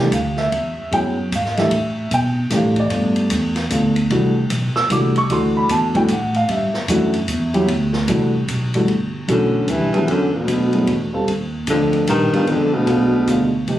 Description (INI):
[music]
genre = jazz, small-group swing and bop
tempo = 150 BPM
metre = 3/4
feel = swing 64% on 8ths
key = G major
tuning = A4 = 440 Hz
[part]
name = dark grand piano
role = accompaniment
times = 0.0-13.8 s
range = G2 to E6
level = -19 LUFS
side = equal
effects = none
[part]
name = upright bass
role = bass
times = 0.0-13.8 s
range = G1 to B2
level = -22 LUFS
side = equal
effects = none
[part]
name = open jazz drum kit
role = drums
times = 0.1-13.8 s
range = hi-hat, kick drum, ride cymbal, snare drum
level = -28 LUFS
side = left 1 dB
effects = none
[part]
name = breathy baritone saxophone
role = melody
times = 9.3-13.5 s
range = B2 to E3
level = -18 LUFS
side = left 2 dB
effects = none
[part]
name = clear baritone saxophone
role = second line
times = 9.3-13.5 s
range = D2 to G2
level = -21 LUFS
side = right 3 dB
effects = none
[sound]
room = light reverb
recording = recorded on a phone in the room, club reverb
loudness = -16 LUFS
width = side -13 dB against mid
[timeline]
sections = 0.0-8.9 A section; 8.9-13.8 B section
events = none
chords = 0.0 Gsus2; 0.5 E; 1.7 A9sus4; 2.9 G7; 4.1 Cmaj9; 5.3 Dadd9; 6.5 G69; 8.9 Gmaj9; 10.1 E7sus2; 11.3 Ebsus2; 12.5 G7b9